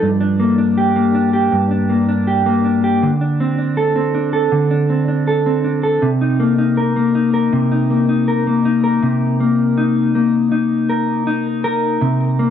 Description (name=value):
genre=dream pop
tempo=80 BPM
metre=4/4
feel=straight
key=C dorian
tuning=A4 = 440 Hz
part: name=mellow electric guitar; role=solo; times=0.0-12.5 s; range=G2 to Bb4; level=-14 LUFS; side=left 1 dB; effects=lush chorus, tape echo
room=little or no reverb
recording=dry, gritty hardware recording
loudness=-14 LUFS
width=side -8 dB against mid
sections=0.0-9.0 A section; 9.0-12.5 B section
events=none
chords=0.0 Gm; 3.0 D5; 6.0 Cm7